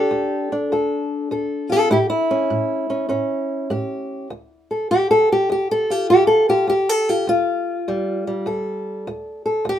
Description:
acoustic country blues, solo or duo; 100 BPM; 4/4; swing 66% on 8ths; D minor; A4 = 436 Hz
fingerpicked old ladder-braced acoustic guitar; solo; 0.0-9.8 s; D2 to A4; -18 LUFS; equal
moderate studio ambience, RT60 0.5 s; minimal, uncompressed stereo recording; -17 LUFS; side -10 dB against mid
0.0-4.3 A section; 4.3-9.8 B section
steel-string acoustic guitar solo 4.3-9.8
0.0 D5; 1.9 A7; 4.3 Dm
0.12 0.71 1.31 | 1.91 2.51 3.10 3.70 | 4.30 4.90 5.49 6.09 | 6.69 7.29 7.88 8.48 | 9.08 9.67

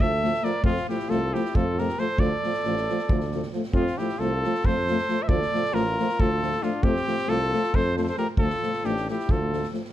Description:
balkan folk, Balkan brass band; 272 BPM (eighths); 7/8; straight; D minor; A4 = 443 Hz
clear cornet; melody; 0.0-9.7 s; F4 to E5; -27 LUFS; right 1 dB; plate reverb
mellow flugelhorn; second line; 0.0-9.7 s; C4 to C5; -33 LUFS; left 3 dB
mellow euphonium; accompaniment; 0.0-9.8 s; A3; -30 LUFS; left 5 dB
mellow trombone; accompaniment; 0.0-9.8 s; F3; -32 LUFS; right 6 dB
warm tuba; bass; 0.0-9.6 s; A1 to F2; -29 LUFS; equal
street-band drum kit; percussion; 0.0-9.9 s; kick drum, snare drum; -28 LUFS; equal
moderate studio ambience, RT60 0.5 s; dark, warm production; -22 LUFS; side -12 dB against mid
0.0-3.7 A section; 3.7-9.9 A section
0.0 Dm; 0.6 F; 2.2 Dm; 3.7 F; 5.3 Dm; 6.8 F; 8.4 Dm
0.19 0.41 | 0.64 0.86 1.08 1.30 1.53 1.75 1.97 | 2.19 2.42 2.64 2.86 3.08 3.30 3.52 | 3.75 3.97 4.19 4.41 4.63 4.85 5.07 | 5.29 5.51 5.73 5.96 6.17 6.40 6.62 | 6.84 7.06 7.28 7.50 7.72 7.94 8.16 | 8.38 8.60 8.82 9.04 9.26 9.48 9.70

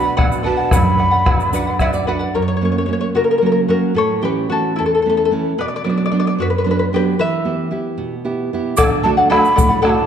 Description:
andean folk, Andean ensemble; 74 BPM (dotted quarters); 6/8; straight; B minor; A4 = 440 Hz
breathy mellow quena; melody; 0.0-1.8, 8.8-10.1 s; F#5 to D6; -18 LUFS; right 1 dB
charango; accompaniment; 0.0-10.1 s; E4 to F#5; -18 LUFS; left 3 dB
nylon-string guitar; accompaniment; 0.0-10.1 s; E2 to E5; -19 LUFS; right 3 dB
bombo; percussion; 0.2-1.9, 8.8-10.0 s; -18 LUFS; left 1 dB
tube shaker; percussion; 0.3-2.0, 8.8-9.7 s; -32 LUFS; right 8 dB
wet scoring stage reverb, RT60 1.5 s; dark, warm production; -14 LUFS; side -8 dB against mid
0.0-2.3 A section; 2.3-8.8 B section; 8.8-10.1 C section
nylon-string guitar fill 1.5-2.3; charango solo 2.3-8.8
0.0 Bm; 2.3 F#; 4.0 A; 5.6 Bm; 7.2 Em; 8.8 D
| 0.72 1.53 | 2.34 3.15 | 3.96 4.77 | 5.58 6.38 | 7.18 7.98 | 8.78 9.57

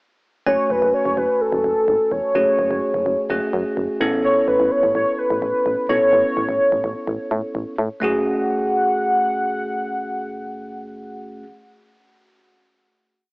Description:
synth-pop; 127 BPM; 4/4; straight; F# minor; A4 = 440 Hz
warm velvety synth lead; melody; 0.5-11.4 s; A4 to F#5; -19 LUFS; equal; chorus, tape echo
bell-like tine electric piano; accompaniment; 0.5-11.5 s; A3 to G#5; -24 LUFS; equal; phaser
solid FM bass; bass; 0.5-11.4 s; E1 to A2; -25 LUFS; equal
moderate plate reverb, RT60 3.0 s; worn, warbling old tape, cassette tape, warbly pitch drift, AM radio sound; -17 LUFS; side -29 dB against mid
0.5-8.0 verse; 8.0-11.8 final chord
0.5 F#madd9; 4.0 Aadd9; 8.0 F#madd9
| 0.46 0.94 1.41 1.88 | 2.35 2.83 3.30 3.77 | 4.24 4.72 5.19 5.66 | 6.13 6.61 7.08 7.55 | 8.02 8.49 8.97 9.44 | 9.91 10.38 10.86 11.33

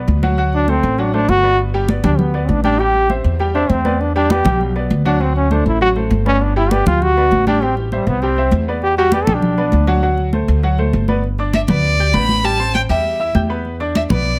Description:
latin, salsa; 199 BPM; 4/4; straight; G major; A4 = 440 Hz
clear concert grand piano; accompaniment; 0.0-14.4 s; F#3 to G6; -24 LUFS; equal
upright bass; bass; 0.0-14.4 s; G1 to E2; -20 LUFS; equal
congas; percussion; 0.1-14.4 s; -23 LUFS; equal
bright trombone; melody; 0.5-10.1 s; E3 to A4; -19 LUFS; equal; plate reverb
warm violin; melody; 11.5-14.4 s; D5 to B5; -20 LUFS; equal; plate reverb
light reverb; close, detailed microphones; -16 LUFS; mono
0.0-11.2 A section; 11.2-14.4 B section
trombone solo 0.0-11.2
0.4 D7; 1.6 Gadd9; 2.8 Am7; 4.0 Em7; 5.2 D7; 6.4 Gadd9; 7.6 Am7; 8.8 Em7; 10.0 D7; 11.2 Gadd9; 12.4 Am7; 13.7 E7(no3)
0.08 | 0.39 0.69 0.99 1.29 | 1.59 1.89 2.19 2.49 | 2.79 3.10 3.40 3.70 | 4.00 4.30 4.60 4.91 | 5.21 5.51 5.81 6.11 | 6.41 6.71 7.01 7.32 | 7.62 7.92 8.22 8.52 | 8.82 9.13 9.43 9.73 | 10.03 10.33 10.63 10.94 | 11.24 11.54 11.84 12.14 | 12.44 12.74 13.05 13.35 | 13.65 13.95 14.25

